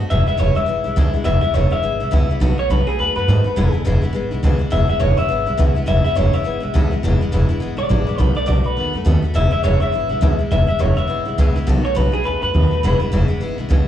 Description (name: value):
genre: rockabilly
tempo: 207 BPM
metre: 4/4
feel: swing 60% on 8ths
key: E major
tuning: A4 = 439 Hz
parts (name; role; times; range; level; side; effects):
- picked steel-string acoustic guitar; accompaniment; 0.0-13.9 s; E2 to F#4; -23 LUFS; left 3 dB; slapback echo
- upright bass; bass; 0.0-13.9 s; E1 to G#2; -17 LUFS; equal; none
- electric guitar through a small old amp; melody; 0.1-13.0 s; G#4 to E5; -21 LUFS; left 1 dB; slapback echo, analog delay
room: small room ambience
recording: live gig heard through the venue's PA, cassette tape, club reverb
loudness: -15 LUFS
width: side -11 dB against mid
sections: 0.0-4.7 A section; 4.7-13.9 A section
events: none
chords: 0.1 E; 2.4 B7; 3.6 E; 8.2 B7; 9.4 E; 11.7 B7; 12.8 E